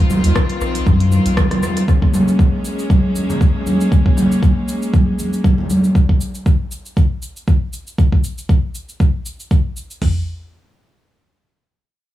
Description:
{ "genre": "afro house", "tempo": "118 BPM", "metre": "4/4", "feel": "swing 55% on 16ths", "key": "Bb minor", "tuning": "A4 = 441 Hz", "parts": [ { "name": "rich chamber string section", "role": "sustained chords", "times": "0.0-5.9 s", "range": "Eb3 to F4", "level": "-24 LUFS", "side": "equal", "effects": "sidechain pumping" }, { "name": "warm sub bass", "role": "bass", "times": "0.1-1.3 s", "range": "Bb1 to Gb2", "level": "-16 LUFS", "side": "left 1 dB", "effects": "tube saturation, sidechain pumping" }, { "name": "deep house drum kit", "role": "drums", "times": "0.1-10.0 s", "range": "cabasa, hi-hat, rim click", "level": "-28 LUFS", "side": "left 1 dB", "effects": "dub echo" }, { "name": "congas", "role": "percussion", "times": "0.1-5.8 s", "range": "none", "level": "-18 LUFS", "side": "equal", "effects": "dub echo" }, { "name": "afro-pop drum kit", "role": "drums", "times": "0.4-10.1 s", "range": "hi-hat, kick drum, toms", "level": "-14 LUFS", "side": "equal", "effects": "none" } ], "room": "light reverb", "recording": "echo-heavy mix, small room ambience", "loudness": "-14 LUFS", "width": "side -14 dB against mid", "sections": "0.0-10.0 A section; 10.0-12.1 B section", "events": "none", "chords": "0.0 Ebm; 1.9 Bbm7; 5.9 N.C.", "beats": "0.36 0.86 1.37 | 1.88 2.39 2.90 3.41 | 3.92 4.42 4.93 5.44 | 5.95 6.46 6.97 7.47 | 7.98 8.49 9.00 9.51 | 10.02" }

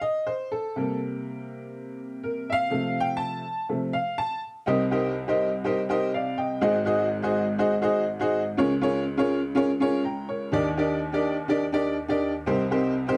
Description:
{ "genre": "soul", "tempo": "123 BPM", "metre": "4/4", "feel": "straight", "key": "unclear", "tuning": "A4 = 441 Hz", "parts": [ { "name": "clear upright piano", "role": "solo", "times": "0.0-13.2 s", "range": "Ab1 to Bb5", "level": "-26 LUFS", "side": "equal", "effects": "none" } ], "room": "moderate club reverb, RT60 0.9 s", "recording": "none", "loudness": "-26 LUFS", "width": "mono", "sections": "0.0-4.7 A section; 4.7-13.2 B section", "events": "upright piano solo 0.0-4.7", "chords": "0.0 F (rootless); 0.8 C7(no3); 2.7 F/C; 4.7 Cm7; 6.6 Ab7; 8.6 Db6; 10.5 Ebmaj7; 12.5 Cm7", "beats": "0.29 | 0.78 1.26 1.75 2.24 | 2.73 3.21 3.70 4.19 | 4.68 5.17 5.65 6.14 | 6.63 7.12 7.60 8.09 | 8.58 9.07 9.55 10.04 | 10.53 11.02 11.51 11.99 | 12.48 12.97" }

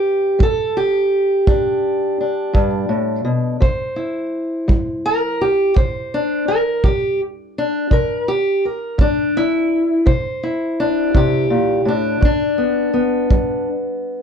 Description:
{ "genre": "acoustic country blues, solo or duo", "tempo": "56 BPM (dotted quarters)", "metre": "12/8", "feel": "straight", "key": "unclear", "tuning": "A4 = 440 Hz", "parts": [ { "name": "fingerpicked steel-string acoustic guitar", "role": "melody", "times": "0.0-14.2 s", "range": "G2 to C5", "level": "-17 LUFS", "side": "equal", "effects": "none" }, { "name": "kick drum", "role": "drums", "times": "0.4-13.5 s", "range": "none", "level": "-16 LUFS", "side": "right 1 dB", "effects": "none" } ], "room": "light reverb", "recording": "dark, warm production", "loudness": "-16 LUFS", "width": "side -7 dB against mid", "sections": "0.0-14.2 A section", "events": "steel-string acoustic guitar solo 0.0-14.2", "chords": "0.0 G; 3.6 C7; 12.2 G", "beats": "0.40 1.47 2.54 | 3.62 4.69 5.77 6.84 | 7.92 9.00 10.07 11.15 | 12.23 13.31" }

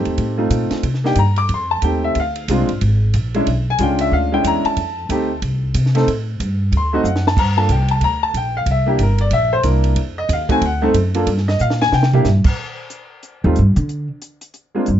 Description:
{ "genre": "jazz piano trio", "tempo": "184 BPM", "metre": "4/4", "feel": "swing 62% on 8ths", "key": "F mixolydian", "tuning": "A4 = 441 Hz", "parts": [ { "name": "clear baby grand piano", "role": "melody", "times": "0.0-14.9 s", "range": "G3 to D6", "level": "-18 LUFS", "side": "left 1 dB", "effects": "none" }, { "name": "upright bass", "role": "bass", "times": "0.0-15.0 s", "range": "G1 to D3", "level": "-17 LUFS", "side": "equal", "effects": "none" }, { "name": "compact cocktail drum kit", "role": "drums", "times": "0.1-15.0 s", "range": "crash cymbal, hi-hat, kick drum, ride cymbal, snare drum, toms", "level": "-23 LUFS", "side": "right 2 dB", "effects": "none" } ], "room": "light reverb", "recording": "dark, warm production, nothing above 7.8 kHz", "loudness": "-15 LUFS", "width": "side -10 dB against mid", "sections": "0.0-12.6 A section; 12.6-15.0 A section", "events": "grand piano solo 0.0-12.6; drum fill 7.0-7.4, 11.6-12.3; upright bass solo 12.6-15.0", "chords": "0.0 F9; 0.8 C7(no3); 1.5 F9; 2.2 Bb9; 3.5 Bdim7; 4.8 F7; 6.1 Gsus2; 6.7 D7b9; 7.4 Gm; 8.7 C9; 10.0 F7(no3); 10.6 D; 11.3 Gm; 11.9 C5; 12.6 F7sus2 (rootless); 13.9 N.C.", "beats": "0.19 0.52 | 0.85 1.18 1.50 1.83 | 2.16 2.48 2.81 3.14 | 3.46 3.79 4.12 4.44 | 4.77 5.10 5.42 5.75 | 6.07 6.40 6.72 7.05 | 7.37 7.70 8.02 8.35 | 8.67 9.00 9.32 9.65 | 9.97 10.30 10.62 10.95 | 11.28 11.60 11.93 12.26 | 12.58 12.91 13.23 13.56 | 13.89 14.21 14.54 14.87" }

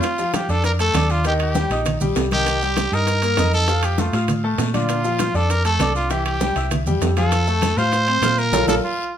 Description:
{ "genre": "latin, salsa", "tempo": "198 BPM", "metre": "4/4", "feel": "straight", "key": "unclear", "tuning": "A4 = 440 Hz", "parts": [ { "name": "growling trumpet", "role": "melody", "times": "0.0-9.1 s", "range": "F4 to C5", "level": "-22 LUFS", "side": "right 1 dB", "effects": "none" }, { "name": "bongos", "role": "percussion", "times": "0.0-8.8 s", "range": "none", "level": "-30 LUFS", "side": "left 4 dB", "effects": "none" }, { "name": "congas", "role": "percussion", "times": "0.0-8.8 s", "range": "none", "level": "-28 LUFS", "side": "right 1 dB", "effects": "none" }, { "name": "guiro", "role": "percussion", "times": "0.0-8.8 s", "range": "none", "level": "-37 LUFS", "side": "left 6 dB", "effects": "none" }, { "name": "maracas", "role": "percussion", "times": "0.0-8.8 s", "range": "none", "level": "-35 LUFS", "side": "right 6 dB", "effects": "none" }, { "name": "timbales", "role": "percussion", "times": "0.0-8.8 s", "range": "none", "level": "-29 LUFS", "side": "right 8 dB", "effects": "none" }, { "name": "bright grand piano", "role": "accompaniment", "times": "0.2-8.8 s", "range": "D3 to F6", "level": "-24 LUFS", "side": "left 3 dB", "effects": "none" }, { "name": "hollow-body short-scale fingered electric bass", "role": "bass", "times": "0.5-8.8 s", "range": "Bb1 to Bb2", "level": "-22 LUFS", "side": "equal", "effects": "none" } ], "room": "moderate large studio reverb, RT60 0.9 s", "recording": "minimal, uncompressed stereo recording", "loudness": "-17 LUFS", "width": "side -9 dB against mid", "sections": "0.0-9.2 A section", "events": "band accent 8.5-9.2", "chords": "0.0 Ebmaj7(b5, no3); 1.3 Eb; 2.5 Cm7; 3.7 F; 4.9 Bbmaj7; 6.1 C; 7.3 F; 8.5 Bb5", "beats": "| 0.04 0.34 0.64 0.95 | 1.25 1.55 1.86 2.16 | 2.46 2.77 3.07 3.38 | 3.68 3.98 4.29 4.59 | 4.89 5.20 5.50 5.80 | 6.11 6.41 6.71 7.02 | 7.32 7.62 7.93 8.23 | 8.53 8.84" }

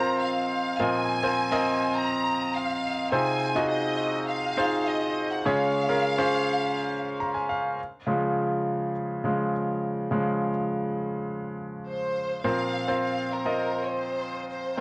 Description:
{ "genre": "pop", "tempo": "103 BPM", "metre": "4/4", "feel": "straight", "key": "Bb minor", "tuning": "A4 = 444 Hz", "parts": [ { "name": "warm studio violin section", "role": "melody", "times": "0.0-7.5, 11.9-14.8 s", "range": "Bb4 to Bb5", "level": "-32 LUFS", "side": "equal", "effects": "cassette tape" }, { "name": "bright concert grand piano", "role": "accompaniment", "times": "0.0-14.8 s", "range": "Bb2 to Bb5", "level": "-28 LUFS", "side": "equal", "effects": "cassette tape" } ], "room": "moderate studio reverb, RT60 0.5 s", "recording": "home recording on cassette", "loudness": "-27 LUFS", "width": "mono", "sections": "0.0-7.8 A section; 7.8-12.4 B section; 12.4-14.8 C section", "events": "grand piano fill 6.9-7.8; grand piano solo 7.8-12.4", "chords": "0.0 Bbsus2; 3.1 Fm7/C; 5.5 Db; 12.4 Bbsus2", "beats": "0.21 | 0.79 1.37 1.96 2.54 | 3.12 3.70 4.29 4.87 | 5.45 6.03 6.62 7.20 | 7.78 8.37 8.95 9.53 | 10.11 10.70 11.28 11.86 | 12.44 13.03 13.61 14.19 | 14.78" }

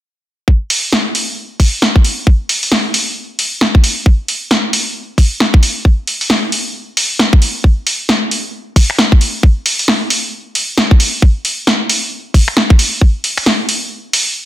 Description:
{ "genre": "UK garage, two-step garage", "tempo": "134 BPM", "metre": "4/4", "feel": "swing 61% on 16ths", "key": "none", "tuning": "none", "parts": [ { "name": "electronic kick drum", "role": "drums", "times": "0.5-13.1 s", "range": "none", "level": "-8 LUFS", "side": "equal", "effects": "none" }, { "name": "punchy analog drum machine", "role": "drums", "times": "0.7-14.2 s", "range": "finger snaps, hi-hat, snare drum", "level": "-13 LUFS", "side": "equal", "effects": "none" } ], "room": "light reverb", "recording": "dense, heavily limited modern master", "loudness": "-11 LUFS", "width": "side -14 dB against mid", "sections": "0.5-14.5 A section", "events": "none", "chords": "none", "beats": "| 0.48 0.93 1.37 1.82 | 2.27 2.72 3.16 3.61 | 4.06 4.51 4.96 5.40 | 5.85 6.30 6.75 7.19 | 7.64 8.09 8.54 8.98 | 9.43 9.88 10.33 10.78 | 11.22 11.67 12.12 12.57 | 13.02 13.46 13.91" }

